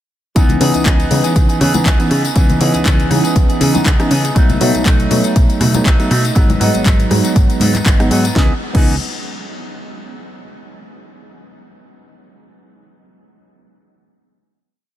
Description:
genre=filtered disco house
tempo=120 BPM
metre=4/4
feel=swing 55% on 16ths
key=C# minor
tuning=A4 = 443 Hz
part: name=tine electric piano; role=accompaniment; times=0.4-8.9 s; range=E3 to G#4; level=-18 LUFS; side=equal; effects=phaser, sidechain pumping
part: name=electric guitar with an envelope filter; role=riff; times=0.4-8.9 s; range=E3 to G#4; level=-22 LUFS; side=right 3 dB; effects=lush chorus, sidechain pumping
part: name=plucky analog bass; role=bass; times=0.4-9.0 s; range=G#1 to C#3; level=-18 LUFS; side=equal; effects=sidechain pumping
part: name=electronic kick drum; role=drums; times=0.4-8.8 s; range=none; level=-12 LUFS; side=equal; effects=overdrive, studio reverb
part: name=house drum kit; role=drums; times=0.4-8.8 s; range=crash cymbal, handclaps, hi-hat, rim click, snare drum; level=-22 LUFS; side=left 2 dB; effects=overdrive, sidechain pumping on hats, studio reverb, sidechain pumping on cymbals
part: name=tambourine and congas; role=percussion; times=0.4-8.3 s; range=none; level=-24 LUFS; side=left 5 dB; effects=sidechain pumping on perc
room=light reverb, digital ambience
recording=none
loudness=-11 LUFS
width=side -12 dB against mid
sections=0.4-8.4 drop; 8.4-10.4 final chord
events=drop 0.4-8.4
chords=0.4 C#m9; 4.4 B7; 6.4 G#m7; 8.4 C#m9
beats=| 0.36 0.86 1.36 1.86 | 2.36 2.86 3.36 3.86 | 4.36 4.86 5.36 5.86 | 6.36 6.86 7.36 7.86 | 8.36 8.86

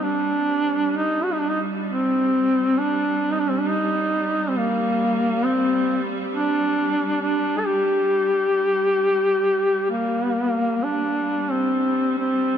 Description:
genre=caucasian folk, Caucasian lament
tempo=67 BPM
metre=3/4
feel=rubato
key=G minor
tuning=A4 = 439 Hz
part: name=warm duduk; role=melody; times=0.0-12.6 s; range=Bb3 to A4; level=-20 LUFS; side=equal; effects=none
part: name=bright symphonic string section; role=drone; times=0.0-12.6 s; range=G3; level=-29 LUFS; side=right 1 dB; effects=none
room=wet cathedral reverb, RT60 4.3 s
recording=dark, warm production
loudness=-19 LUFS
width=side -8 dB against mid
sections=0.0-10.8 A section; 10.8-12.6 B section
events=none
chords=none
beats=| 0.04 0.96 1.88 | 2.78 3.68 4.56 | 5.43 6.32 7.20 | 8.09 8.98 9.90 | 10.83 11.74

